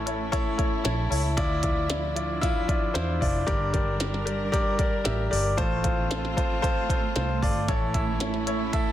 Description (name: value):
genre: piano-driven pop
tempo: 114 BPM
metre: 4/4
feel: straight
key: D minor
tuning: A4 = 440 Hz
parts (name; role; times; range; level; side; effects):
- clear baby grand piano; accompaniment; 0.0-8.9 s; G2 to E5; -27 LUFS; left 2 dB; none
- warm studio string section; sustained chords; 0.0-8.9 s; F3 to Bb4; -34 LUFS; right 5 dB; none
- vintage muted fingered electric bass; bass; 0.0-8.9 s; F1 to E2; -30 LUFS; equal; none
- glitchy drum kit; drums; 0.1-8.9 s; hi-hat, kick drum, snare drum; -28 LUFS; equal; none
room: light reverb, small room ambience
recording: dense, heavily limited modern master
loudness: -23 LUFS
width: side -12 dB against mid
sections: 0.0-8.9 A section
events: none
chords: 0.0 A; 1.4 Dmadd9; 3.5 Gm; 5.6 F/A; 7.7 A